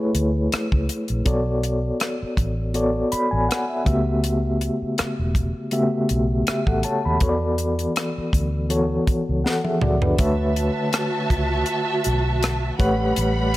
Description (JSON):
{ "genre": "lush 1970s-style soul", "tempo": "81 BPM", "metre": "4/4", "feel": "swing 54% on 16ths", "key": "A major", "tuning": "A4 = 441 Hz", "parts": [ { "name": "mellow reed electric piano", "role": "accompaniment", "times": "0.0-13.6 s", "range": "C#3 to B5", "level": "-22 LUFS", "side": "left 1 dB", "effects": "fast tremolo" }, { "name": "vintage muted fingered electric bass", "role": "bass", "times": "0.1-13.6 s", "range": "E1 to E2", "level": "-24 LUFS", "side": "equal", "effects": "none" }, { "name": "tight funk drum kit", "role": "drums", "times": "0.1-13.6 s", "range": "hi-hat, kick drum, rim click, snare drum, toms", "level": "-24 LUFS", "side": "equal", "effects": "none" }, { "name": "warm studio string section", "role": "second line", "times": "10.2-13.6 s", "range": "G3 to B5", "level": "-25 LUFS", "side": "right 2 dB", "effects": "none" } ], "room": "light reverb, small room ambience", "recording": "none", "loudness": "-19 LUFS", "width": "side -16 dB against mid", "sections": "0.0-10.2 A section; 10.2-13.6 B section", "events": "reed electric piano fill 2.8-4.2; drum fill 9.4-10.2", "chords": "0.0 Amaj7; 1.3 Bm9; 3.9 A13; 7.2 E9sus4; 10.2 Dmaj13; 12.8 A13" }